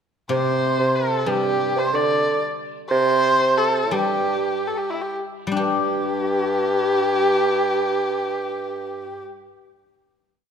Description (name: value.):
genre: chinese traditional, Chinese chamber ensemble.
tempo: 63-93 BPM.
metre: 2/4.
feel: rubato.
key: unclear.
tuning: A4 = 440 Hz.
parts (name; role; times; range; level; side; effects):
dark erhu; melody; 0.3-9.2 s; E4 to D5; -21 LUFS; equal; none.
mellow bassoon; second line; 0.3-9.2 s; G2 to D3; -23 LUFS; right 2 dB; none.
guzheng; accompaniment; 0.3-10.5 s; C3 to G4; -26 LUFS; left 4 dB; none.
room: wet scoring stage reverb, RT60 1.6 s.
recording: none.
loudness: -19 LUFS.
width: side -7 dB against mid.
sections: 0.0-5.6 A section; 5.6-9.3 final chord.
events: slowing down 2.6-5.6.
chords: none.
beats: 0.64 | 1.29 1.93 | 2.58 3.24 | 3.94 4.71 | 5.60 6.54 | 7.46 8.39.